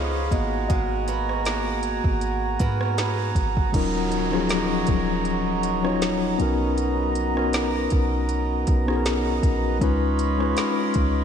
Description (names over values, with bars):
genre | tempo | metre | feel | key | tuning
contemporary R&B | 79 BPM | 4/4 | swing 54% on 16ths | Eb minor | A4 = 439 Hz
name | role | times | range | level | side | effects
mellow tine electric piano | accompaniment | 0.0-11.2 s | F3 to F5 | -25 LUFS | left 4 dB | fast stereo tremolo
pedal harmonium | sustained chords | 0.0-11.2 s | Gb3 to Cb6 | -28 LUFS | right 6 dB | stereo widening
picked swing-style acoustic guitar | arpeggios | 0.0-4.3 s | Db3 to Bb4 | -34 LUFS | right 8 dB | diffuse ambient delay
clean 808-style bass | bass | 0.0-11.2 s | Eb1 to Ab2 | -27 LUFS | equal | none
smooth R&B drum kit | drums | 0.3-11.1 s | crash cymbal, hi-hat, kick drum, rim click, snare drum | -27 LUFS | equal | vintage 12-bit sampler grit
downlifter | sound effects | 3.7-9.8 s | none | -36 LUFS | equal | none
room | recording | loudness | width
moderate huge ambient reverb, RT60 4.8 s | dreamy mix soaked in reverb | -21 LUFS | side -8 dB against mid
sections
0.0-3.7 A section; 3.7-11.2 B section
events
tine electric piano solo 0.0-3.7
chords
0.3 Abm9; 3.7 Ebm7; 6.4 Bmaj7; 9.8 Db9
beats
| 0.70 1.46 2.22 2.98 | 3.74 4.50 5.26 6.02 | 6.78 7.54 8.30 9.05 | 9.81 10.57